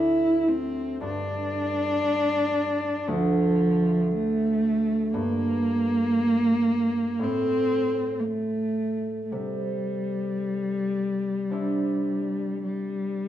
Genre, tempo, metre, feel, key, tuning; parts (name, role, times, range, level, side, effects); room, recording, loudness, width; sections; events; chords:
celtic folk; 52-59 BPM; 4/4; rubato; A4 = 440 Hz
dark cello; melody; 0.0-13.3 s; F3 to E4; -24 LUFS; equal
concert harp; accompaniment; 0.0-13.3 s; D2 to E4; -30 LUFS; right 2 dB
wet stone room reverb, RT60 1.3 s; band playing live in one room; -23 LUFS; side -11 dB against mid
0.0-13.3 A section
0.0 N.C.; 9.3 Cadd9